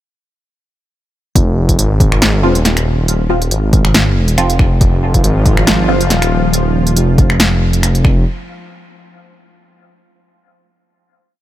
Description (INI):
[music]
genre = deep dubstep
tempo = 139 BPM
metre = 4/4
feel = swing 55% on 16ths, half-time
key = F minor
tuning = A4 = 441 Hz
[part]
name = dark detuned saw bass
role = bass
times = 1.4-8.2 s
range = Eb1 to Ab1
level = -13 LUFS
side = equal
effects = none
[part]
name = deep house drum kit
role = drums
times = 1.4-8.1 s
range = finger snaps, hi-hat, snare drum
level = -16 LUFS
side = equal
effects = none
[part]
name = electronic kick drum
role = drums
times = 1.4-8.1 s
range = none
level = -13 LUFS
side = equal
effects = none
[part]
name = filtered dub chord stab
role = stabs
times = 2.4-6.0 s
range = F3 to F4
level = -20 LUFS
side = equal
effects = phaser, wide subtle chorus, dub echo
[part]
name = bowed-like drone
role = sustained chords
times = 5.2-6.6 s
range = F3 to F4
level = -20 LUFS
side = equal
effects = built-in reverb, phaser
[sound]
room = little or no reverb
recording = none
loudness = -10 LUFS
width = side -14 dB against mid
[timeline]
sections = 1.4-8.3 drop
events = drop 1.4-8.3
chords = 1.4 F5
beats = | 1.36 1.79 2.22 2.65 | 3.08 3.51 3.95 4.38 | 4.81 5.24 5.67 6.10 | 6.54 6.97 7.40 7.83